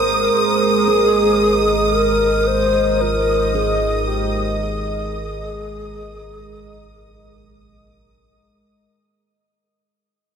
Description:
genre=ambient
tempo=56 BPM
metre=4/4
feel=straight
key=unclear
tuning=A4 = 440 Hz
part: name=warm analog pad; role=sustained chords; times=0.0-8.9 s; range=Ab3 to Eb5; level=-21 LUFS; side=right 1 dB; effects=chorus
part: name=felt-muted upright piano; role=arpeggios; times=0.0-9.0 s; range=Eb3 to C6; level=-32 LUFS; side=right 3 dB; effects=none
part: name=warm sub bass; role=bass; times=0.0-8.9 s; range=Ab1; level=-28 LUFS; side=equal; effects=tube saturation
part: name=rich studio violin section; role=texture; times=0.0-9.0 s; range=Eb6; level=-23 LUFS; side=right 1 dB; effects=none
part: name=mellow wooden-headed alto flute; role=melody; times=0.3-7.8 s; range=G4 to C5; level=-19 LUFS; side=equal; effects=diffuse ambient delay
room=wet cathedral reverb, RT60 5.7 s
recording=none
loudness=-15 LUFS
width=side -7 dB against mid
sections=0.0-8.9 A section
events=fade-out 0.0-8.9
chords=0.3 Ebsus4/Ab

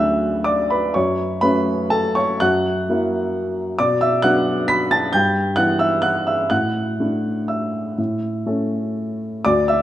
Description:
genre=classical, piano waltz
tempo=114-141 BPM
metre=3/4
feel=rubato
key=unclear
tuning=A4 = 440 Hz
part: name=warm upright piano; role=solo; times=0.0-9.8 s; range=D2 to B6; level=-17 LUFS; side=equal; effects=none
room=wet recital hall reverb, RT60 1.8 s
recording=dark, warm production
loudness=-17 LUFS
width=side -13 dB against mid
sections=0.0-9.8 A section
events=none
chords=0.0 D; 0.9 F#m; 2.4 F#7; 3.8 Bm; 5.1 Em/G; 6.5 Asus4; 8.0 A

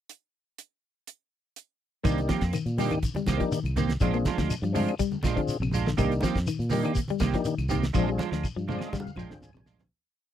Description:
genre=afrobeat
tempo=122 BPM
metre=4/4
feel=straight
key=C minor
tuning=A4 = 444 Hz
part: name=damped 70s drum kit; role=drums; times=0.1-9.9 s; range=hi-hat, kick drum, snare drum, toms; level=-31 LUFS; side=equal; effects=none
part: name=mellow tonewheel organ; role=accompaniment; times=2.0-9.9 s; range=Bb3 to Ab5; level=-31 LUFS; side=left 3 dB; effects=slow rotary speaker, chorus vibrato
part: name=clean electric guitar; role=stabs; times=2.0-9.8 s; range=Eb3 to G4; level=-30 LUFS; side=right 10 dB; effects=analog chorus
part: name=congas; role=percussion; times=2.0-9.9 s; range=none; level=-35 LUFS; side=right 2 dB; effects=none
part: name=semi-hollow electric guitar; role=arpeggios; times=2.1-9.9 s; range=C3 to Bb3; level=-32 LUFS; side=left 7 dB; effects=analog chorus
part: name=fingered electric bass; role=bass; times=2.1-9.9 s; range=Bb1 to Bb2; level=-30 LUFS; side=equal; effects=none
part: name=claves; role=percussion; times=2.1-9.7 s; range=none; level=-45 LUFS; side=left 10 dB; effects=none
part: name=shekere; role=percussion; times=2.1-9.9 s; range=none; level=-36 LUFS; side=left 3 dB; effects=none
room=little or no reverb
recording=dry, close 1970s-style studio recording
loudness=-25 LUFS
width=side -10 dB against mid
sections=0.1-2.0 pickup bar; 2.0-9.9 groove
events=fade-out 7.9-9.9; drum fill 7.9-9.9; tonewheel organ fill 8.4-9.9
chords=0.1 N.C.; 2.0 Cm7; 4.0 Bb7; 6.0 Cm7; 7.9 Bb7

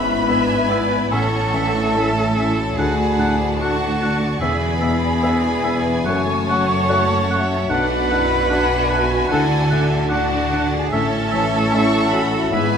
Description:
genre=cinematic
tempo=74 BPM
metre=4/4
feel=rubato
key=A major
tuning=A4 = 442 Hz
part: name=clear cello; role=melody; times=0.0-12.8 s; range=F#4 to C#5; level=-24 LUFS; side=right 3 dB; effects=none
part: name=clear symphonic violin section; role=melody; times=0.0-12.8 s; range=E5 to C#6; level=-30 LUFS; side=left 2 dB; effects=none
part: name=clear oboe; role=second line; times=0.0-12.7 s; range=E5 to F#5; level=-28 LUFS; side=right 1 dB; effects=none
part: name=dark clarinet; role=second line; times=0.0-12.7 s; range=A3 to D4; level=-30 LUFS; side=left 1 dB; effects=none
part: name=rich symphonic violin section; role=second line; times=0.0-12.8 s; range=C#5 to B5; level=-29 LUFS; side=equal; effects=none
part: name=small flute group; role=second line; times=0.0-12.8 s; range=F#5 to C#6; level=-25 LUFS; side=left 2 dB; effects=none
part: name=rich symphonic viola section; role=accompaniment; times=0.0-12.8 s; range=C#3 to G#4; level=-28 LUFS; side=right 2 dB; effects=none
part: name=warm baby grand piano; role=accompaniment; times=0.0-12.8 s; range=B1 to E5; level=-26 LUFS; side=left 2 dB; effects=none
part: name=mellow French horn section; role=sustained chords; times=0.0-12.8 s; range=A3 to F#4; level=-26 LUFS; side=left 4 dB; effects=none
part: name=concert harp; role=arpeggios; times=0.0-12.8 s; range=F#2 to E6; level=-28 LUFS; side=left 7 dB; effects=none
part: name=clear symphonic double bass section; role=bass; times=0.0-12.8 s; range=E1 to D2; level=-26 LUFS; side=right 3 dB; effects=none
part: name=rich symphonic cello section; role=bass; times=0.0-12.8 s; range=D2 to D3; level=-25 LUFS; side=right 3 dB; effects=none
room=wet recital hall reverb, RT60 1.6 s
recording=none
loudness=-16 LUFS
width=side -7 dB against mid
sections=0.0-12.8 A section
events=none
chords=0.0 E/G#; 1.1 A; 2.8 D; 4.4 E; 6.1 F#m; 7.7 Bm; 9.3 D; 10.9 A

